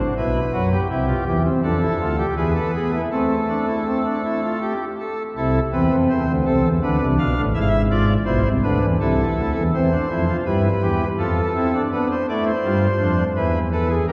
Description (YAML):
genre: classical, baroque-style 3-part fugue for pipe organ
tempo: 82 BPM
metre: 3/4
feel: straight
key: A minor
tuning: A4 = 440 Hz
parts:
  - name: pipe organ, cornet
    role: solo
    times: 0.0-14.1 s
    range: G#1 to F5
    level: -20 LUFS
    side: equal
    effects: none
room: wet church reverb, RT60 3.9 s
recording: dark, warm production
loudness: -20 LUFS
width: mono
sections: 0.0-5.4 A section; 5.4-9.7 B section; 9.7-14.1 A section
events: none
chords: 0.2 Em/B; 0.9 C; 1.6 Dm/F; 2.4 E; 3.1 Am; 5.4 Am/C; 6.8 Bm7b5; 7.6 E/G#; 9.0 Am/C; 9.7 C/E; 11.2 F; 11.9 Bdim; 13.4 E